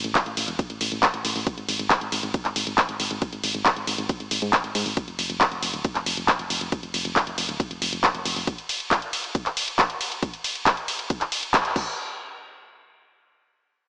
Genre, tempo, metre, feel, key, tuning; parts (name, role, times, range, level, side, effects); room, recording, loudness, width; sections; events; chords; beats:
uplifting trance; 137 BPM; 4/4; straight; A4 = 438 Hz
solid FM bass; bass; 0.0-8.5 s; D1 to G#2; -32 LUFS; equal; sidechain pumping
house drum kit; drums; 0.0-11.8 s; crash cymbal, handclaps, hi-hat, ride cymbal; -23 LUFS; equal; sidechain pumping on hats, sidechain pumping on cymbals
electronic kick drum; drums; 0.2-11.8 s; -27 LUFS; equal
moderate lush hall reverb, RT60 1.9 s, digital ambience; small speaker sound; -22 LUFS; side -32 dB against mid
0.0-12.0 A section; 12.0-13.9 B section
drop 0.0-12.0; band accent 11.5
0.15 0.59 1.03 | 1.47 1.91 2.34 2.78 | 3.22 3.66 4.09 4.53 | 4.97 5.41 5.85 6.28 | 6.72 7.16 7.60 8.04 | 8.47 8.91 9.35 9.79 | 10.23 10.66 11.10 11.54